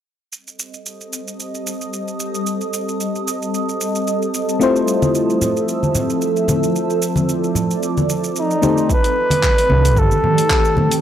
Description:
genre	sunset chillout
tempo	112 BPM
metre	4/4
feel	swing 55% on 16ths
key	unclear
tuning	A4 = 441 Hz
part	shimmering ambient pad	sustained chords	0.7-11.0 s	Eb3 to E5	-21 LUFS	right 1 dB	chorus, built-in reverb, phaser
part	deep house drum kit	drums	0.3-11.0 s	handclaps, hi-hat, shaker	-25 LUFS	right 2 dB	overdrive
part	mellow FM electric piano	accompaniment	4.6-8.9 s	A3 to C5	-20 LUFS	moving between left 5 dB and right 2 dB	chorus, auto-pan, cassette tape, tape echo
part	congas	percussion	5.0-10.9 s	none	-21 LUFS	left 1 dB	none
part	breathy flugelhorn	melody	8.4-11.0 s	Eb4 to B4	-17 LUFS	right 1 dB	tape echo
part	electronic kick drum	drums	8.9-10.6 s	none	-18 LUFS	equal	overdrive
part	fingered electric bass	bass	9.7-10.1 s	G1 to C2	-14 LUFS	equal	none
room	light reverb, digital ambience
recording	dry, gritty hardware recording, transformer saturation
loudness	-15 LUFS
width	side -10 dB against mid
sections	0.3-8.9 A section; 8.9-11.0 B section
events	none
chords	0.3 Cm6; 4.6 Fmaj7; 8.6 Cm6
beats	| 0.33 0.86 1.40 1.93 | 2.47 3.00 3.54 4.08 | 4.61 5.15 5.68 6.22 | 6.75 7.29 7.83 8.36 | 8.90 9.43 9.97 10.51

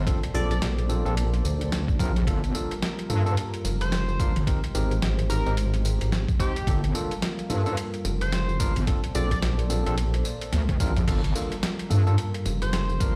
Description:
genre	glitch hop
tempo	109 BPM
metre	4/4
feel	swing 60% on 16ths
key	G minor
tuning	A4 = 439 Hz
part	dark analog pad	sustained chords	0.0-13.2 s	G3 to D5	-38 LUFS	equal	chorus, sidechain pumping
part	wobble bass	bass	0.0-12.2 s	G1 to G2	-26 LUFS	equal	chorus, overdrive
part	overdriven tine electric piano	stabs	0.1-13.1 s	Bb3 to C5	-35 LUFS	equal	sidechain pumping, tape echo
part	boom bap sampler-style drum kit	drums	0.1-13.1 s	crash cymbal, hi-hat, snare drum, tambourine, toms	-35 LUFS	equal	studio reverb
part	electronic kick drum	drums	0.1-13.1 s	none	-28 LUFS	equal	studio reverb
part	sync lead	melody	0.3-13.2 s	G4 to D5	-37 LUFS	equal	chorus, tape echo
part	vowel-sweep wobble bass	bass	0.3-13.1 s	F1 to D2	-27 LUFS	equal	chorus
room	little or no reverb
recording	played on a big sound system in a bare room, large studio reverb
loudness	-25 LUFS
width	mono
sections	0.0-13.2 A section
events	drum fill 10.5-11.1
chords	0.1 Bbmaj9; 2.3 Gm7; 4.5 Abmaj7; 6.7 Gm7; 8.9 Bbmaj9; 11.1 Gm7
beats	| 0.07 0.62 1.17 1.72 | 2.27 2.82 3.37 3.92 | 4.47 5.02 5.57 6.12 | 6.67 7.22 7.78 8.32 | 8.88 9.43 9.98 10.53 | 11.08 11.63 12.18 12.73

